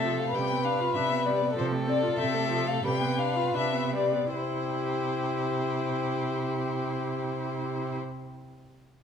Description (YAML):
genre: quick classical-period movement for string quartet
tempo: 74-99 BPM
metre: 2/4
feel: rubato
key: C major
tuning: A4 = 442 Hz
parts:
  - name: rich violin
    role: melody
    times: 0.0-8.0 s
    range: C5 to G5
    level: -31 LUFS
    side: left 8 dB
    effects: none
  - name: dark violin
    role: second line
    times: 0.0-8.0 s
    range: G4 to B4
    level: -32 LUFS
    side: left 2 dB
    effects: none
  - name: rich viola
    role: accompaniment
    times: 0.0-8.0 s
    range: F3 to F4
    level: -33 LUFS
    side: right 3 dB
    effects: none
  - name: rich cello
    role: bass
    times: 0.0-8.0 s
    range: C3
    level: -33 LUFS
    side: right 4 dB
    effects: none
room: moderate recital hall reverb, RT60 1.6 s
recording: none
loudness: -26 LUFS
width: side -7 dB against mid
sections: 0.0-4.3 A section; 4.3-7.4 B section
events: slowing down 0.9-4.3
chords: 0.3 G7/C; 1.6 F/C; 2.8 G7/C; 4.3 C